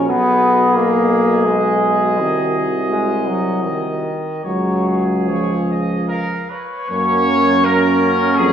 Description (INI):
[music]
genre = classical, hymn-like piece for brass band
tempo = 72-90 BPM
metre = 3/4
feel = rubato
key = F# major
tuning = A4 = 441 Hz
[part]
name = dark trumpet section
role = melody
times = 0.0-8.5 s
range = G#4 to E#5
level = -22 LUFS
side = left 1 dB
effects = none
[part]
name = warm flugelhorn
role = second line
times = 0.0-8.5 s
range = C#4 to A#4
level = -22 LUFS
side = right 2 dB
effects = none
[part]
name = clear euphonium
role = accompaniment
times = 0.0-8.5 s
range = A#3 to G#4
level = -25 LUFS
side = left 1 dB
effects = none
[part]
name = clear trombone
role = accompaniment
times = 0.0-8.5 s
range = D#3 to B3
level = -18 LUFS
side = equal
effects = none
[part]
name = clear tuba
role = bass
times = 0.0-8.5 s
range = B1 to F#2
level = -20 LUFS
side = right 1 dB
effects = none
[sound]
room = wet stone room reverb, RT60 1.3 s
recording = heard from further back in the room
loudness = -14 LUFS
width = side -9 dB against mid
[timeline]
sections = 0.0-6.9 A section; 6.9-8.5 B section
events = none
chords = 0.1 G#m7/B; 2.2 G#7/B#; 4.4 C#; 6.9 F#